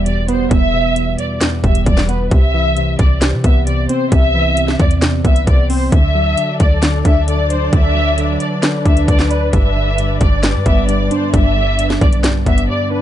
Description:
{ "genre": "hip hop, trap", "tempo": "133 BPM", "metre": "4/4", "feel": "half-time", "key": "unclear", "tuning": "A4 = 440 Hz", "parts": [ { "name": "warm studio violin section", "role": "melody", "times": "0.0-13.0 s", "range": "B4 to E5", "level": "-20 LUFS", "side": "left 1 dB", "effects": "low-pass filter" }, { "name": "warbly lo-fi synth keys", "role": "accompaniment", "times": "0.0-13.0 s", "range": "E2 to D5", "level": "-19 LUFS", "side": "right 1 dB", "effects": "chorus, low-pass filter" }, { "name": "clean 808-style bass", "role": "bass", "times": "0.0-12.7 s", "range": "E1 to C3", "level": "-17 LUFS", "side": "equal", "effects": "none" }, { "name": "trap drum kit", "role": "drums", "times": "0.1-12.7 s", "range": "handclaps, hi-hat, kick drum, snare drum", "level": "-15 LUFS", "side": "equal", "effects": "none" }, { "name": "dark symphonic string section", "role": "sustained chords", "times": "5.9-13.0 s", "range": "F#3 to D5", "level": "-23 LUFS", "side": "left 3 dB", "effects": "none" } ], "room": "little or no reverb", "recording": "dark, warm production, nothing above 10.7 kHz", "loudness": "-12 LUFS", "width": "side -12 dB against mid", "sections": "0.0-13.0 A section", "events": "break 12.7-13.0", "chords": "0.0 Em; 2.3 Cmaj7; 5.9 D; 9.5 G", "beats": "0.06 | 0.51 0.96 1.41 1.86 | 2.31 2.77 3.22 3.67 | 4.12 4.57 5.02 5.47 | 5.92 6.37 6.83 7.28 | 7.73 8.18 8.63 9.08 | 9.53 9.98 10.43 10.89 | 11.34 11.79 12.24 12.69" }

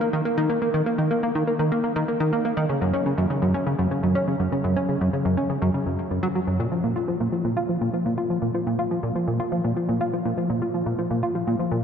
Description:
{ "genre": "ambient", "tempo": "123 BPM", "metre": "4/4", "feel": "straight", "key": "Bb minor", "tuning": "A4 = 442 Hz", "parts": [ { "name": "plucky analog bass", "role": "solo", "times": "0.0-11.8 s", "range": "Gb2 to F4", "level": "-21 LUFS", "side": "equal", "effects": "analog chorus, ping-pong delay" } ], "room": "wet cathedral reverb, RT60 6.8 s", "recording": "in a vast, echoing space", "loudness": "-21 LUFS", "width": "side -7 dB against mid", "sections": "0.0-6.6 A section; 6.6-11.8 B section", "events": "none", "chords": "none", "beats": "0.25 | 0.74 1.23 1.72 2.20 | 2.69 3.18 3.67 4.15 | 4.64 5.13 5.62 6.11 | 6.59 7.08 7.57 8.06 | 8.54 9.03 9.52 10.01 | 10.50 10.98 11.47" }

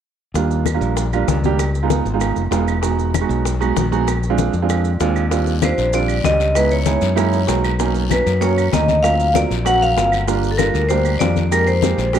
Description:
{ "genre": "Afro-Cuban jazz", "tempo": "194 BPM", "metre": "4/4", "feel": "straight", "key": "unclear", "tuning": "A4 = 440 Hz", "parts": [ { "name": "modern bright fingered electric bass", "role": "bass", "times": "0.3-12.2 s", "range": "Fb1 to Gb2", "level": "-19 LUFS", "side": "left 1 dB", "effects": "none" }, { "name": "congas", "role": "percussion", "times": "0.3-12.2 s", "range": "none", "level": "-25 LUFS", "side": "left 11 dB", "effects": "none" }, { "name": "warm concert grand piano", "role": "accompaniment", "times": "0.4-12.2 s", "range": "F#3 to G4", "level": "-20 LUFS", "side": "right 9 dB", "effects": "none" }, { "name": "bongos", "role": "percussion", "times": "0.4-12.2 s", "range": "none", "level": "-28 LUFS", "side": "left 13 dB", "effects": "none" }, { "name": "maracas", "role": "percussion", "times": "0.4-12.2 s", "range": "none", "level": "-34 LUFS", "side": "right 11 dB", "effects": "none" }, { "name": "claves", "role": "percussion", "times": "0.7-12.2 s", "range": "none", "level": "-33 LUFS", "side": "right 8 dB", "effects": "none" }, { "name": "guiro", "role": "percussion", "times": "5.3-12.2 s", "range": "none", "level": "-33 LUFS", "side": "left 14 dB", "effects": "none" }, { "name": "vibraphone with medium hard mallets", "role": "melody", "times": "5.6-12.2 s", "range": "A4 to F#5", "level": "-18 LUFS", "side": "left 1 dB", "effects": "none" } ], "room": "moderate spring reverb, RT60 2.0 s, studio reverb", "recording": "1960s-style stereo with parts hard left and right", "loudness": "-15 LUFS", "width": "side -9 dB against mid", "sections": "0.4-5.3 A section; 5.3-12.2 B section", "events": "none", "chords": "0.4 Ebmaj7; 1.6 Db7; 2.8 Emaj7; 4.1 Bb7; 5.3 Ebmaj13; 6.6 Dbm7; 7.2 Gb13; 7.8 Bmaj9; 9.0 D7alt; 10.3 Gm7; 11.5 Fm11", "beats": "| 0.35 0.66 0.97 1.28 | 1.59 1.90 2.21 2.52 | 2.83 3.14 3.45 3.76 | 4.07 4.38 4.69 5.00 | 5.31 5.62 5.93 6.24 | 6.55 6.86 7.17 7.48 | 7.79 8.11 8.41 8.72 | 9.04 9.35 9.66 9.97 | 10.28 10.59 10.90 11.21 | 11.52 11.83 12.14" }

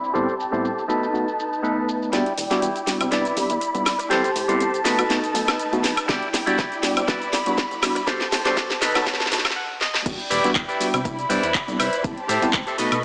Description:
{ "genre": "filtered disco house", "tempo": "121 BPM", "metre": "4/4", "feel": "swing 54% on 16ths", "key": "E minor", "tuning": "A4 = 439 Hz", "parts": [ { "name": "muted chamber string section", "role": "sustained chords", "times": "0.0-13.0 s", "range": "C4 to B5", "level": "-29 LUFS", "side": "equal", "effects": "sidechain pumping, low-pass filter" }, { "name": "house drum kit", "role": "drums", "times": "0.0-13.0 s", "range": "crash cymbal, handclaps, hi-hat, ride cymbal, shaker, snare drum, woodblock", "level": "-27 LUFS", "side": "equal", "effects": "sidechain pumping on perc, low-pass filter on perc, low-pass filter on snare, sidechain pumping on hats, low-pass filter on hats, sidechain pumping on cymbals, low-pass filter on cymbals" }, { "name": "bell-like tine electric piano", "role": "accompaniment", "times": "0.1-13.0 s", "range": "A2 to B4", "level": "-30 LUFS", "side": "equal", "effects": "phaser, sidechain pumping, low-pass filter" }, { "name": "semi-hollow electric guitar", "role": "riff", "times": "0.1-13.0 s", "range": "D#4 to F#5", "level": "-27 LUFS", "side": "equal", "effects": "vintage 12-bit sampler grit, sidechain pumping, low-pass filter" }, { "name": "plucky analog bass", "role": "bass", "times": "2.1-13.0 s", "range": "E1 to C3", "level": "-34 LUFS", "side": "equal", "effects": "sidechain pumping, high-pass filter, low-pass filter" }, { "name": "electronic kick drum", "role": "drums", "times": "6.1-12.6 s", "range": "none", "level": "-32 LUFS", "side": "equal", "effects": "none" } ], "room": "moderate lush hall reverb, RT60 1.9 s, digital ambience", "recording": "high-pass filter, small speaker sound", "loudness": "-22 LUFS", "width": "mono", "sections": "0.0-2.1 A section; 2.1-10.1 B section; 10.1-13.0 C section", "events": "build-up 2.1-10.1; drum fill 2.1-9.6, 9.8; filter sweep 2.1-10.1; clean electric guitar fill 9.3-10.1; break 9.6-10.1; drop 10.1-13.0", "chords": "0.1 Am7; 0.9 B7; 2.1 Em7; 3.1 Cmaj9; 4.1 Am7; 4.9 B7; 6.1 Em7; 7.1 Cmaj9; 8.1 Am7; 8.8 B7; 10.1 Em7; 11.1 Cmaj9; 12.0 Am7", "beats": "| 0.14 0.64 1.13 1.63 | 2.13 2.62 3.12 3.61 | 4.11 4.61 5.10 5.60 | 6.09 6.59 7.08 7.58 | 8.08 8.57 9.07 9.56 | 10.06 10.56 11.05 11.55 | 12.04 12.54 13.04" }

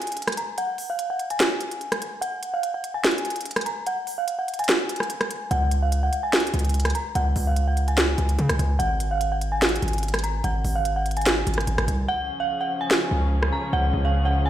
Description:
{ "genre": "hip hop, trap", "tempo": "146 BPM", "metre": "4/4", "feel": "half-time", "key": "Db major", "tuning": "A4 = 440 Hz", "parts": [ { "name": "dark detuned synth bell", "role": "melody", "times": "0.0-14.5 s", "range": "F5 to Bb5", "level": "-27 LUFS", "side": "right 1 dB", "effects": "chorus, low-pass filter, ping-pong delay" }, { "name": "trap drum kit", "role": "drums", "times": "0.0-13.5 s", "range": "hi-hat, rim click, snare drum", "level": "-24 LUFS", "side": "equal", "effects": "none" }, { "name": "hard-hitting 808-style bass", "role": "bass", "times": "5.5-14.5 s", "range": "Ab1 to Db3", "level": "-23 LUFS", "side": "equal", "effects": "none" }, { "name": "muted chamber string section", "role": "sustained chords", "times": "12.1-14.5 s", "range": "Db3 to Ab4", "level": "-30 LUFS", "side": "left 1 dB", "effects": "none" } ], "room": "light reverb", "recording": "played on a big sound system in a bare room, stone room reverb", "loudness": "-21 LUFS", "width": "side -11 dB against mid", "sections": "0.0-14.5 A section", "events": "break 0.0-5.5, 12.1-12.9; filter sweep on synth bell 0.0-12.1; hi-hats muted 12.1-14.5", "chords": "0.0 N.C.; 5.5 Db5; 8.8 N.C.; 12.1 Db", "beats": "0.17 | 0.58 0.99 1.40 1.81 | 2.22 2.63 3.04 3.46 | 3.87 4.28 4.69 5.10 | 5.51 5.92 6.33 6.74 | 7.15 7.56 7.97 8.39 | 8.80 9.21 9.62 10.03 | 10.44 10.85 11.26 11.67 | 12.09 12.50 12.91 13.32 | 13.73 14.14" }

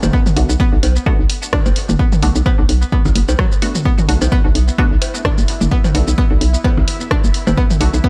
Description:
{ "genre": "minimal techno", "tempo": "129 BPM", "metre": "4/4", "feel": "swing 56% on 16ths", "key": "B minor", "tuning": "A4 = 439 Hz", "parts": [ { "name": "hollow knocking FM bass", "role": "bass", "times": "0.0-8.0 s", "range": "F#1 to B1", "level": "-17 LUFS", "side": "equal", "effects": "sidechain pumping" }, { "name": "punchy analog drum machine", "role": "drums", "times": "0.0-8.0 s", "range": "hi-hat, rim click, shaker", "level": "-26 LUFS", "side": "equal", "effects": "none" }, { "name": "electronic toms, cowbell and congas", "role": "percussion", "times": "0.0-7.8 s", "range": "none", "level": "-25 LUFS", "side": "equal", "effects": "analog delay" }, { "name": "string-like resonator pluck", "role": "riff", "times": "0.1-8.1 s", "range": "F#3 to D4", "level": "-27 LUFS", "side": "equal", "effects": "chorus, sidechain pumping, dub echo" }, { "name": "electronic kick drum", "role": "drums", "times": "0.1-8.1 s", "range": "none", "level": "-18 LUFS", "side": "equal", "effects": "none" }, { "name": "filtered dub chord stab", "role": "stabs", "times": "0.4-7.9 s", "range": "A3 to F#4", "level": "-28 LUFS", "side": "equal", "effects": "phaser, dub echo" }, { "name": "bubbling stepped-filter texture", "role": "texture", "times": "4.1-8.1 s", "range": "E4 to E5", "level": "-33 LUFS", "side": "equal", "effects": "chorus, built-in reverb, sidechain pumping" } ], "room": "little or no reverb", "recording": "echo-heavy mix", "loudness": "-15 LUFS", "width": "mono", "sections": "0.0-8.1 A section", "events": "none", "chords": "0.0 Bm7", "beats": "| 0.13 0.60 1.06 1.53 | 1.99 2.46 2.92 3.39 | 3.85 4.32 4.78 5.25 | 5.71 6.18 6.64 7.11 | 7.58 8.04" }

